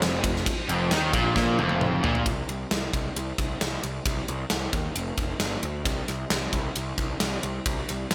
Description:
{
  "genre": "hard rock",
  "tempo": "133 BPM",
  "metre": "4/4",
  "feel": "straight",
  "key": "unclear",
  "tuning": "A4 = 440 Hz",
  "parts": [
    { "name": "phased analog pad", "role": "sustained chords", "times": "0.0-2.2 s", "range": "F3 to G4", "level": "-43 LUFS", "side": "equal", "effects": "none" },
    { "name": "distorted electric guitar", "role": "riff", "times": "0.0-2.3 s", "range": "F2 to Eb3", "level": "-34 LUFS", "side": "equal", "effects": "distortion, slapback echo" },
    { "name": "overdriven semi-hollow guitar", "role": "riff", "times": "0.0-2.3 s", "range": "F2 to Eb3", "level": "-31 LUFS", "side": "equal", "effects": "slapback echo" },
    { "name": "overdriven semi-hollow guitar", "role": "riff", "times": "0.0-2.3 s", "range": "F2 to Eb3", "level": "-34 LUFS", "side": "equal", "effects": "none" },
    { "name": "fuzz picked electric bass", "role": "bass", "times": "0.0-8.1 s", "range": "F1 to Eb2", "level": "-33 LUFS", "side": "equal", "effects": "overdrive" },
    { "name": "gated 80s drum kit", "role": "drums", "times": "0.0-8.1 s", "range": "kick drum, ride cymbal, snare drum, toms", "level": "-30 LUFS", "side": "equal", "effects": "none" }
  ],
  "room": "moderate lush hall reverb, RT60 1.5 s",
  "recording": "big arena sound",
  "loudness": "-27 LUFS",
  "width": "mono",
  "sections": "0.0-2.3 A section; 2.3-8.1 B section",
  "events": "drum fill 1.4-2.3",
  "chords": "0.0 F5; 2.3 N.C.; 5.4 G5; 5.9 N.C.",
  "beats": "0.01 | 0.46 0.91 1.36 1.81 | 2.26 2.71 3.16 3.61 | 4.06 4.51 4.96 5.41 | 5.86 6.31 6.76 7.21 | 7.66 8.12"
}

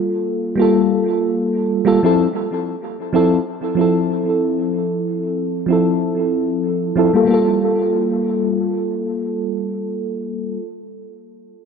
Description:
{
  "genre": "chillout",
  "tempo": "94 BPM",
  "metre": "4/4",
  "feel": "swing 56% on 16ths",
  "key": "G dorian",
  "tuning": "A4 = 441 Hz",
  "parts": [
    { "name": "mellow FM electric piano", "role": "accompaniment", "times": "0.0-10.7 s", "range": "F3 to A4", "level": "-16 LUFS", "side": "equal", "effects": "chorus, auto-pan, low-pass filter, tape echo" }
  ],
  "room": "moderate spring reverb, RT60 2.4 s",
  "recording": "echo-heavy mix",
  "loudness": "-16 LUFS",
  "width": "side -6 dB against mid",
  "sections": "0.0-7.3 A section; 7.3-9.8 B section",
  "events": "none",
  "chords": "0.0 Fmaj7; 7.3 Gm9",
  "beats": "0.27 0.91 1.54 | 2.18 2.82 3.46 4.10 | 4.74 5.37 6.01 6.65 | 7.29 7.93 8.56 9.20"
}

